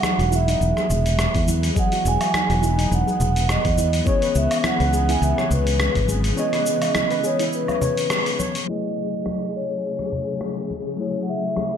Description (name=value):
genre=sunset chillout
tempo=104 BPM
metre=4/4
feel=swing 55% on 16ths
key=F# dorian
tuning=A4 = 439 Hz
part: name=vibraphone with soft mallets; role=melody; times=0.0-11.8 s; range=B4 to G#5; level=-24 LUFS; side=right 2 dB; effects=digital delay, slapback echo
part: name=bell-like tine electric piano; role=accompaniment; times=0.0-11.8 s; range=E3 to E5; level=-28 LUFS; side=moving between left 6 dB and right 2 dB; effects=auto-pan, tape echo, slapback echo
part: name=dark symphonic string section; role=sustained chords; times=0.0-11.8 s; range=C#3 to G#4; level=-31 LUFS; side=left 2 dB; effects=none
part: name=steel pan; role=arpeggios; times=0.0-8.5 s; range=D#4 to C#5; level=-31 LUFS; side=right 2 dB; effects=tape echo, slapback echo
part: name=dusty soul sampler-style drum kit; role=drums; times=0.0-11.8 s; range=cabasa, hi-hat, rim click, woodblock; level=-26 LUFS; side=left 1 dB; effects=none
part: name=congas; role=percussion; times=0.0-11.7 s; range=none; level=-32 LUFS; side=left 2 dB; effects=none
part: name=fingered electric bass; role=bass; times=0.2-6.3 s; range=E1 to E2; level=-21 LUFS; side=equal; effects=none
part: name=electronic kick drum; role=drums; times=1.3-6.1 s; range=none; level=-23 LUFS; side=equal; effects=none
room=moderate concert hall reverb, RT60 1.8 s, small room ambience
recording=big arena sound, low-pass filter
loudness=-19 LUFS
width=side -8 dB against mid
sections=0.0-8.7 A section; 8.7-11.8 B section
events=band accent 8.1; filter sweep 8.7-11.8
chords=0.0 Emaj9; 4.1 C#m7; 8.7 F#m9